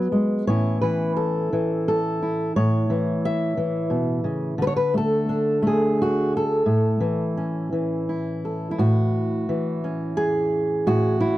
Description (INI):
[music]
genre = folk, solo fingerstyle acoustic guitar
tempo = 87 BPM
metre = 3/4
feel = rubato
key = A major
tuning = A4 = 440 Hz
[part]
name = fingerpicked steel-string acoustic guitar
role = solo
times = 0.0-11.4 s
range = A2 to E5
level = -20 LUFS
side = equal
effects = none
[sound]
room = light reverb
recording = dry, close 1970s-style studio recording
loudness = -20 LUFS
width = side -15 dB against mid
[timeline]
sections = 0.0-8.8 A section; 8.8-11.4 B section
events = none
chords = 0.5 A; 4.6 D5; 6.7 A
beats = | 0.48 1.18 1.87 | 2.56 3.23 3.92 | 4.60 5.29 5.97 | 6.67 7.36 8.07 | 8.78 9.48 10.17 | 10.86